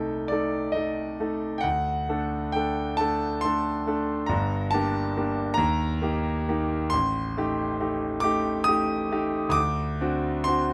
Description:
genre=classical, romantic nocturne for solo piano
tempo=45 BPM (dotted quarters)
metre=6/8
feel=rubato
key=unclear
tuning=A4 = 440 Hz
part: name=clear concert grand piano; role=solo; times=0.0-10.7 s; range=G1 to Eb6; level=-26 LUFS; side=equal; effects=none
room=light reverb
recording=close, detailed microphones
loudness=-26 LUFS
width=mono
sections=0.0-10.7 A section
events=none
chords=0.0 Adim/C; 1.6 D; 4.3 Gm; 5.6 Eb; 6.9 Am7b5; 9.6 D7

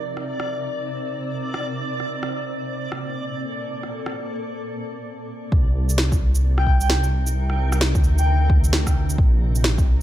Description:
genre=future garage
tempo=131 BPM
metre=4/4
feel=swing 61% on 16ths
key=C dorian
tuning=A4 = 440 Hz
part: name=granular cloud pad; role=sustained chords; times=0.0-10.0 s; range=Bb2 to D5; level=-30 LUFS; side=equal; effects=built-in reverb, sidechain pumping
part: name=backwards swelling texture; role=texture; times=0.0-5.1 s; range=D5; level=-33 LUFS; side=right 1 dB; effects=built-in reverb
part: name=electronic rim click, shaker and snare drum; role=drums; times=0.2-9.9 s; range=none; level=-26 LUFS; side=equal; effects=none
part: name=dark detuned saw bass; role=bass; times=5.5-10.0 s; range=Bb1 to D2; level=-19 LUFS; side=equal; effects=none
part: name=electronic kick drum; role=drums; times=5.5-9.9 s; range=none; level=-18 LUFS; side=equal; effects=none
part: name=breathy flute-like synth lead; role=melody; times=6.6-8.5 s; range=G5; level=-28 LUFS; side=left 2 dB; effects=wide subtle chorus, vintage 12-bit sampler grit, tape echo
room=little or no reverb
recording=none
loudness=-19 LUFS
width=side -13 dB against mid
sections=0.0-5.5 A section; 5.5-10.0 B section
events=stop 5.1-5.5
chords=0.0 Cm9; 1.9 Bbmaj9; 5.5 Cm9; 9.2 Bbsus2

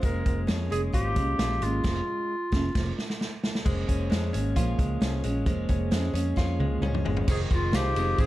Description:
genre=jangly indie pop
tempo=133 BPM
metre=4/4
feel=straight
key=unclear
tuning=A4 = 441 Hz
part: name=warm clarinet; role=melody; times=0.0-3.2, 7.3-8.3 s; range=F4 to Bb4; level=-30 LUFS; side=equal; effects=none
part: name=picked steel-string acoustic guitar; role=accompaniment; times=0.0-8.3 s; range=F3 to Ab4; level=-33 LUFS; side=right 4 dB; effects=none
part: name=direct-recorded clean electric guitar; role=arpeggios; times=0.0-8.3 s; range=Eb3 to F4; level=-34 LUFS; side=left 5 dB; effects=slapback echo
part: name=vintage muted fingered electric bass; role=bass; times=0.0-8.3 s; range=F1 to F2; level=-29 LUFS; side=equal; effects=none
part: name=vintage drum kit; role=drums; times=0.0-8.3 s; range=crash cymbal, hi-hat, kick drum, ride cymbal, snare drum, toms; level=-28 LUFS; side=equal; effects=none
part: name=tambourine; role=percussion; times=7.3-8.3 s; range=none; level=-47 LUFS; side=left 8 dB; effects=none
room=light reverb, studio ambience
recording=dark, warm production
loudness=-24 LUFS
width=side -16 dB against mid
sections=0.0-3.7 A section; 3.7-7.3 B section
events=band accent 1.8-3.7; drum fill 2.7-3.7, 6.4-7.3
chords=0.0 Bbm7/F; 7.3 Fm7

